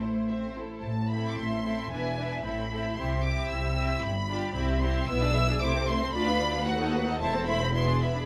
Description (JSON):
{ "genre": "quick classical-period movement for string orchestra", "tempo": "113 BPM", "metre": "2/4", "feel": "straight", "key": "A minor", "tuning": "A4 = 444 Hz", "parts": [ { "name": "rich studio violin section", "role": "melody", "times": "0.0-8.3 s", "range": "C5 to E6", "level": "-36 LUFS", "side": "equal", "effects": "none" }, { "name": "clear studio violin section", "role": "second line", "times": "0.0-8.3 s", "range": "G4 to F5", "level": "-36 LUFS", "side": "equal", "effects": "none" }, { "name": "clear studio viola section", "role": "accompaniment", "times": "0.0-8.3 s", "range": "A3 to F#4", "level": "-38 LUFS", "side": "equal", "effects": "none" }, { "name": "rich studio cello section", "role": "bass", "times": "0.0-8.3 s", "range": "D2 to A3", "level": "-36 LUFS", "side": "equal", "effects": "none" }, { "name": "rich studio double bass section", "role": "bass", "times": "0.0-8.3 s", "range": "E1 to D#2", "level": "-33 LUFS", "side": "equal", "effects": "none" } ], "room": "light reverb", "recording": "none", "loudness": "-28 LUFS", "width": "mono", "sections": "0.8-8.3 A section", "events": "none", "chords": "0.0 Am; 1.9 E7; 2.4 Am; 3.0 C; 4.0 G7; 4.6 C; 5.1 E7/B; 5.6 Am/C; 6.1 Bdim/D; 6.7 B7/D#; 7.2 Am/E; 7.7 E7" }